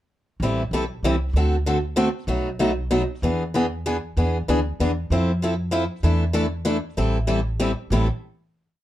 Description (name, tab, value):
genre	acoustic string swing (jazz manouche)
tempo	192 BPM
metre	3/4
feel	swing 59% on 8ths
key	A minor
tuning	A4 = 441 Hz
part	picked steel-string acoustic guitar	accompaniment	0.4-8.1 s	A2 to A4	-22 LUFS	left 1 dB	none
part	upright bass	bass	0.4-8.1 s	A1 to F2	-24 LUFS	equal	none
room	light reverb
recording	dark, warm production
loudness	-20 LUFS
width	side -13 dB against mid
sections	0.4-7.9 A section; 7.9-8.8 final chord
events	none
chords	0.4 Am7; 1.3 D7; 2.3 B7; 3.2 E7; 5.1 Fmaj7; 6.0 E7sus4; 7.0 Am7